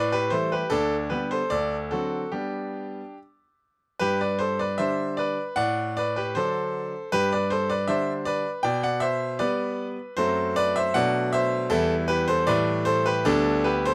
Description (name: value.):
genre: classical-period piano sonatina.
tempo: 71-80 BPM.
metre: 2/4.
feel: rubato.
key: G major.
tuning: A4 = 440 Hz.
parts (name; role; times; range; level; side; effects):
clear grand piano; solo; 0.0-13.9 s; D2 to G5; -25 LUFS; equal; none.
room: little or no reverb.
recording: close, detailed microphones.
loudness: -25 LUFS.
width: mono.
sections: 0.0-4.0 A section; 4.0-13.9 B section.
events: none.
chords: 0.0 A5; 0.7 G/D; 1.5 D7; 2.3 G; 5.6 D7/A; 7.1 G; 8.6 G/B; 10.2 F#dim; 10.9 Bm7; 11.7 Em; 12.5 A5; 13.3 G/D.